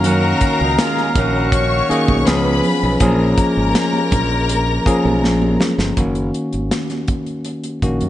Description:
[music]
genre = lush 1970s-style soul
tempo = 81 BPM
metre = 4/4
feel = straight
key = unclear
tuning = A4 = 441 Hz
[part]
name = warm studio string section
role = second line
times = 0.0-5.9 s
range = Bb4 to Db6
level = -21 LUFS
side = left 3 dB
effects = none
[part]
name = bell-like tine electric piano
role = accompaniment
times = 0.0-8.1 s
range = Eb3 to Ab4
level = -18 LUFS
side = left 1 dB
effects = none
[part]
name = dark woodwind section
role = sustained chords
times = 0.0-5.9 s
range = Db3 to F5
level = -27 LUFS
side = right 1 dB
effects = none
[part]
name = warm horn section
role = stabs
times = 0.0-2.2 s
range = Bb2 to Ab4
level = -23 LUFS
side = right 1 dB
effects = none
[part]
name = modern bright fingered electric bass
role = bass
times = 0.0-8.1 s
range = Gb1 to Gb2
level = -20 LUFS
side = equal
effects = none
[part]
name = modern studio drum kit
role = drums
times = 0.0-8.1 s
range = hi-hat, kick drum, snare drum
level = -20 LUFS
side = equal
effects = none
[part]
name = congas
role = percussion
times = 0.0-8.1 s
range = none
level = -27 LUFS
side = right 5 dB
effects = none
[sound]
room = light reverb, studio reverb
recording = nothing above 10.3 kHz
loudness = -14 LUFS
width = side -13 dB against mid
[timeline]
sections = 0.0-6.0 A section; 6.0-8.1 B section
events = drum fill 5.2-6.0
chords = 0.0 Ebm7; 2.3 Db7; 3.0 Bbm7; 6.0 Gb6

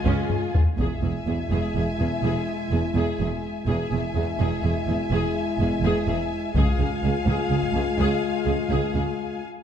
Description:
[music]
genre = cinematic, epic orchestral film score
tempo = 83 BPM (dotted quarters)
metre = 12/8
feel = straight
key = E major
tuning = A4 = 444 Hz
[part]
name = warm symphonic violin section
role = melody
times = 0.0-9.4 s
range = G#5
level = -36 LUFS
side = left 4 dB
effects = none
[part]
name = rich symphonic violin section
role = second line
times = 0.0-9.4 s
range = E#4 to E#5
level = -33 LUFS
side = left 2 dB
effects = none
[part]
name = rich symphonic viola section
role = accompaniment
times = 0.0-9.0 s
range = G#3 to G#4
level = -31 LUFS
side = equal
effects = none
[part]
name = dark French horn section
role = sustained chords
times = 0.0-9.4 s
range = G#3 to E#4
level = -29 LUFS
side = left 4 dB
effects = none
[part]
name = rich symphonic cello section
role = bass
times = 0.1-9.0 s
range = C#2 to E2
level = -28 LUFS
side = right 2 dB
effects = none
[part]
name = rich symphonic double bass section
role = bass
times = 0.1-9.0 s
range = E1 to C#2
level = -27 LUFS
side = right 3 dB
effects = none
[part]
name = taiko ensemble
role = drums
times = 0.1-1.7, 6.5-7.8 s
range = none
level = -24 LUFS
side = left 1 dB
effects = none
[sound]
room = moderate scoring stage reverb, RT60 2.0 s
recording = dark, warm production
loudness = -22 LUFS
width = side -8 dB against mid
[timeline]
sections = 0.8-9.6 A section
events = drum fill 0.1-0.8; break 9.4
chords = 0.0 C#; 0.8 E; 6.6 C#

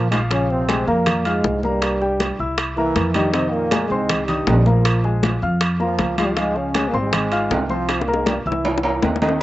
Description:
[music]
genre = latin, salsa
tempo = 158 BPM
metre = 4/4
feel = straight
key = unclear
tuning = A4 = 440 Hz
[part]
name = clear trombone section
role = melody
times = 0.0-9.2 s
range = G2 to F4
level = -22 LUFS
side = right 1 dB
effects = slapback echo
[part]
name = warm concert grand piano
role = accompaniment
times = 0.0-9.4 s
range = Eb3 to F6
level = -24 LUFS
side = left 2 dB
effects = slapback echo
[part]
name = upright bass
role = bass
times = 0.0-9.4 s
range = Ab1 to F2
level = -23 LUFS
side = equal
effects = none
[part]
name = bongos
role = percussion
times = 0.1-9.4 s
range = none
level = -25 LUFS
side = left 6 dB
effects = none
[part]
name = congas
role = percussion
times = 0.1-9.4 s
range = none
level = -26 LUFS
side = left 2 dB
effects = none
[part]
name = timbales and agogo bells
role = percussion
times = 0.1-9.4 s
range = none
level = -25 LUFS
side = right 3 dB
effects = none
[sound]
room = little or no reverb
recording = recorded outdoors, with no room sound, nothing above 8.0 kHz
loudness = -17 LUFS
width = side -15 dB against mid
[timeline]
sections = 0.0-9.4 A section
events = drum fill 7.9-9.4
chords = 0.3 Bbm7; 1.8 C7; 3.3 Fm7; 4.9 Bbm7; 6.4 Dbmaj7; 7.9 C7sus4; 8.6 C7

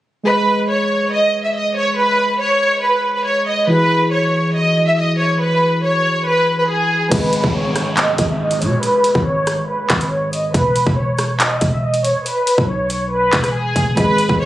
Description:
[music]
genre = hip hop, drill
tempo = 140 BPM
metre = 4/4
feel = half-time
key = G# minor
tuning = A4 = 440 Hz
[part]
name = muted felt-like synth keys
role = accompaniment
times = 0.2-10.6, 13.9-14.5 s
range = E3 to D#5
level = -21 LUFS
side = equal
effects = chorus, low-pass filter
[part]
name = warm symphonic violin section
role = melody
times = 0.3-14.5 s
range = G#4 to E5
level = -16 LUFS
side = equal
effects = low-pass filter, ping-pong delay
[part]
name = growling 808-style bass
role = bass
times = 7.1-14.5 s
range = E1 to B2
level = -20 LUFS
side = equal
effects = none
[part]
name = drill drum kit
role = drums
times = 7.1-14.4 s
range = crash cymbal, handclaps, hi-hat, kick drum, rim click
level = -19 LUFS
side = equal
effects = none
[part]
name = downlifter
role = sound effects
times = 7.1-10.5 s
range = none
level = -28 LUFS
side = left 1 dB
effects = none
[sound]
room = digital ambience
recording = recorded on a phone in the room, studio reverb, compression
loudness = -14 LUFS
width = side -14 dB against mid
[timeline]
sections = 0.3-7.1 A section; 7.1-14.5 B section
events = filter sweep 7.1-14.0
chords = 0.3 G#m; 3.7 Eadd9; 7.1 G#m; 10.5 E5

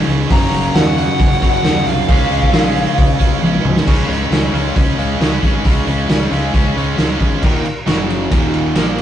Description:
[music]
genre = hard rock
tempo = 135 BPM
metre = 4/4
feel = straight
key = unclear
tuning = A4 = 440 Hz
[part]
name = chorused pulse-width pad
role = sustained chords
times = 0.0-3.9, 7.4-9.0 s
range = Gb3 to F5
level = -30 LUFS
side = right 2 dB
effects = none
[part]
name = overdriven semi-hollow guitar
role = riff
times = 0.0-9.0 s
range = Eb2 to Db4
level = -20 LUFS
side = left 5 dB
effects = none
[part]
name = tight distorted guitar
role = riff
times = 0.0-9.0 s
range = Eb2 to Db4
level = -20 LUFS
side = right 6 dB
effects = distortion
[part]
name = fuzz fingered electric bass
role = bass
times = 0.1-9.0 s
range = Eb1 to Eb2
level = -21 LUFS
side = equal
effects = overdrive
[part]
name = raw garage drum kit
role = drums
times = 0.1-9.0 s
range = crash cymbal, hi-hat, kick drum, ride cymbal, snare drum, toms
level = -15 LUFS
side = equal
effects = none
[part]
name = lead guitar through a small cranked amp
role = melody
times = 0.3-3.6 s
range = F5 to Bb5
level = -20 LUFS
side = equal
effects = overdrive
[sound]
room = light reverb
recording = rough rehearsal-room recording, nothing above 10.5 kHz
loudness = -12 LUFS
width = side -10 dB against mid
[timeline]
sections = 0.0-3.9 A section; 3.9-7.4 B section; 7.4-9.0 C section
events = drum fill 3.4-3.9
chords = 0.3 Gb; 2.1 Db; 3.9 Db5; 7.4 Eb5; 7.9 Gb5; 8.3 Eb5

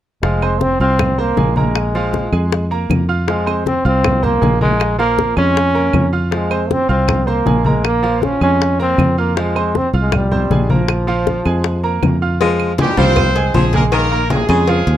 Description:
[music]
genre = latin, salsa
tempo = 158 BPM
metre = 4/4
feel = straight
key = F minor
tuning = A4 = 440 Hz
[part]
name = bright trombone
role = melody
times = 0.2-12.0 s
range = F3 to Db4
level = -17 LUFS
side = equal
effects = none
[part]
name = bright grand piano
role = accompaniment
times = 0.2-15.0 s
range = F3 to F6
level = -22 LUFS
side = right 4 dB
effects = none
[part]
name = fingered electric bass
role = bass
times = 0.2-15.0 s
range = F1 to F2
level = -17 LUFS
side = equal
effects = none
[part]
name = bongos and cowbell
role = percussion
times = 0.2-15.0 s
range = none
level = -23 LUFS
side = left 10 dB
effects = none
[part]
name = congas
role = percussion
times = 0.2-15.0 s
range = none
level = -21 LUFS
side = left 1 dB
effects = none
[part]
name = claves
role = percussion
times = 0.4-14.7 s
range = none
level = -27 LUFS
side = right 12 dB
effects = none
[part]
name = warm baritone saxophone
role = second line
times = 12.4-14.8 s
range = Db3 to Ab3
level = -19 LUFS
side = left 6 dB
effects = none
[part]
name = bright horn section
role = melody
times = 12.8-15.0 s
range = G3 to C5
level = -18 LUFS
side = equal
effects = none
[sound]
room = small room ambience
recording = dry, close 1970s-style studio recording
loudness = -13 LUFS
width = side -12 dB against mid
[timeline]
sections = 0.2-12.4 A section; 12.4-15.0 B section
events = none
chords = 0.2 Fm; 1.8 Bb5; 3.3 Fm; 4.8 Bbm7; 6.3 Fm; 7.8 Bbm7; 9.4 Fmadd9; 10.9 Bb5; 12.4 Fmadd9; 13.9 Bbm7

